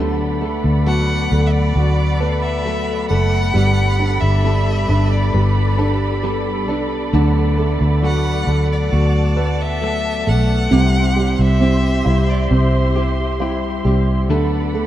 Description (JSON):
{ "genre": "pop ballad", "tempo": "67 BPM", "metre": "4/4", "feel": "straight", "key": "D mixolydian", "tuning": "A4 = 440 Hz", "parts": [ { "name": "warm grand piano", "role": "accompaniment", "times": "0.0-14.9 s", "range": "C3 to B4", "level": "-22 LUFS", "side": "right 6 dB", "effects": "none" }, { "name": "dark studio string section", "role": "sustained chords", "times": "0.0-14.9 s", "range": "G4 to C6", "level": "-25 LUFS", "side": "equal", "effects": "none" }, { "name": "direct-recorded clean electric guitar", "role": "arpeggios", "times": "0.0-14.9 s", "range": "C3 to A4", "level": "-25 LUFS", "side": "left 6 dB", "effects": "wide subtle chorus" }, { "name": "vintage muted fingered electric bass", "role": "bass", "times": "0.0-14.9 s", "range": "F#1 to D2", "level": "-17 LUFS", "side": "equal", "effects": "none" }, { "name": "rich violin", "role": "melody", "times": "0.9-13.4 s", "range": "B4 to F#5", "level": "-25 LUFS", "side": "left 2 dB", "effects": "none" } ], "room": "light reverb, small room ambience", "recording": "rough home demo mix", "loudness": "-14 LUFS", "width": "side -12 dB against mid", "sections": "0.0-14.9 A section", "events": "none", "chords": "0.0 D6; 3.6 Gadd9; 7.1 D6; 10.7 C; 14.3 D6" }